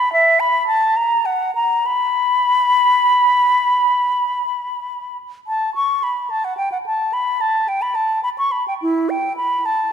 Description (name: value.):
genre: classical, baroque-style fantasia for unaccompanied flute.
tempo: 64-74 BPM (dotted quarters).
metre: 12/8.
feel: rubato.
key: unclear.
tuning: A4 = 440 Hz.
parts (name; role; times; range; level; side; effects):
mellow silver concert flute; solo; 0.0-9.9 s; E4 to C#6; -15 LUFS; equal; none.
room: moderate scoring stage reverb, RT60 2.0 s.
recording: minimal, uncompressed stereo recording.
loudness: -15 LUFS.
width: side -8 dB against mid.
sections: 0.0-5.5 A section; 5.5-9.9 A section.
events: none.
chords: none.